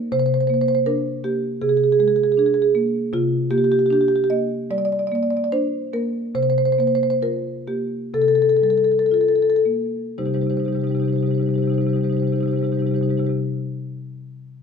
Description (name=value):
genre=classical, contemporary piece for solo marimba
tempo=55-80 BPM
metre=4/4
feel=rubato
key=C dorian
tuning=A4 = 439 Hz
part: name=marimba with soft mallets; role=solo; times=0.0-13.4 s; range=C3 to Eb5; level=-18 LUFS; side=equal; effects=none
room=moderate recital hall reverb, RT60 1.5 s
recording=close, detailed microphones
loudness=-18 LUFS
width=side -6 dB against mid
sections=0.0-10.2 A section; 10.2-14.3 B section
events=slowing down 1.6-10.2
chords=0.1 Bb9/C; 3.1 Csus2; 6.4 Gm9/C; 10.2 Cm